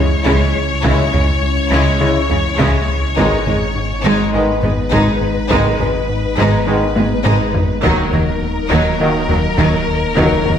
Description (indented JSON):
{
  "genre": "cinematic, hybrid orchestral and electronic film score",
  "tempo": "103 BPM",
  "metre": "4/4",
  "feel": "straight",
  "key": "C# dorian",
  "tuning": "A4 = 440 Hz",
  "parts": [
    { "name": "rich symphonic violin section", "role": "melody", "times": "0.0-10.6 s", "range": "A#4 to C#5", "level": "-22 LUFS", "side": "left 4 dB", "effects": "none" },
    { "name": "warm symphonic violin section", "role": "second line", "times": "0.0-10.5 s", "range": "G#3 to E4", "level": "-24 LUFS", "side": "left 2 dB", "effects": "none" },
    { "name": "clear symphonic viola section", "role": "accompaniment", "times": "0.0-10.5 s", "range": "F#3 to G#3", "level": "-23 LUFS", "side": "right 1 dB", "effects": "none" },
    { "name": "glassy FM pad", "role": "sustained chords", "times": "0.0-10.6 s", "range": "F#3 to D#5", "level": "-25 LUFS", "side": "left 2 dB", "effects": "ensemble chorus, built-in reverb" },
    { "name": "thumb-piano-like synth pluck", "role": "arpeggios", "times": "0.0-10.6 s", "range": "C#3 to G#4", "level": "-26 LUFS", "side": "right 2 dB", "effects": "none" },
    { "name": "rubbery square bass", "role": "riff", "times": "0.0-10.6 s", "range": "C#2 to G#3", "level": "-23 LUFS", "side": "left 2 dB", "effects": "none" },
    { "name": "rich symphonic cello section", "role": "bass", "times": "0.0-10.5 s", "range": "G#2 to D#3", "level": "-22 LUFS", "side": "right 2 dB", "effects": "none" },
    { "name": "rich symphonic double bass section", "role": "bass", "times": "0.0-10.5 s", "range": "G#1 to D#2", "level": "-22 LUFS", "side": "right 3 dB", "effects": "none" },
    { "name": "warm sub bass", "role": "bass", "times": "0.0-10.6 s", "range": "D#1 to C#2", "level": "-23 LUFS", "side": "equal", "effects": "none" },
    { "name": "taiko ensemble", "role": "drums", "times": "0.3-10.6 s", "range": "none", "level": "-21 LUFS", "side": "equal", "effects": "none" },
    { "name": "bright trombone section", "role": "sustained chords", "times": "0.8-10.4 s", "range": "C#3 to G#3", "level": "-24 LUFS", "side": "right 2 dB", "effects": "none" },
    { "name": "dark French horn section", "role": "sustained chords", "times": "0.8-10.4 s", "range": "A#3 to E4", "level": "-24 LUFS", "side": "left 2 dB", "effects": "none" }
  ],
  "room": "wet scoring stage reverb, RT60 1.5 s",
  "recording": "none",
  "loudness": "-13 LUFS",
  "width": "side -8 dB against mid",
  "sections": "0.0-10.6 A section",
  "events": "drum fill 7.0-7.8",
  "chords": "0.0 C#m; 3.2 G#m; 7.8 D#m"
}